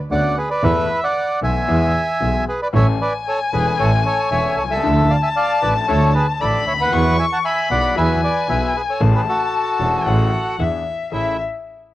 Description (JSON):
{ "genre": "tango", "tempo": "115 BPM", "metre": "4/4", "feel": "rubato", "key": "A major", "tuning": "A4 = 440 Hz", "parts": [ { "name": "bandoneon", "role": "melody", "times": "0.1-11.4 s", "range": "E4 to A5", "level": "-20 LUFS", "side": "right 1 dB", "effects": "cassette tape" }, { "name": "bright concert grand piano", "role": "accompaniment", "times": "0.1-11.3 s", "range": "E1 to A4", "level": "-25 LUFS", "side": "left 6 dB", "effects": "cassette tape" }, { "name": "dark double bass", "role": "bass", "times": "0.1-11.3 s", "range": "E1 to E2", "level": "-19 LUFS", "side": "right 1 dB", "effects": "none" }, { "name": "warm violin", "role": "second line", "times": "2.7-11.4 s", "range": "E5 to C#6", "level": "-21 LUFS", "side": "left 5 dB", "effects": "cassette tape, plate reverb" } ], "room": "moderate small room ambience, RT60 0.5 s", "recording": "home recording on cassette", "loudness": "-16 LUFS", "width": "side -15 dB against mid", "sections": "0.0-11.1 A section", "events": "none", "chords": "0.0 Bmadd9/D; 0.6 Esus4; 1.7 E; 2.7 A; 4.8 Dmadd9; 6.9 Eadd9; 9.0 Amaj7; 10.6 E7; 11.1 Amaj7", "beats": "0.11 | 0.63 1.16 1.68 2.21 | 2.74 3.27 3.79 4.32 | 4.84 5.36 5.89 6.41 | 6.93 7.45 7.97 8.49 | 9.01 9.54 10.06 10.59 | 11.12" }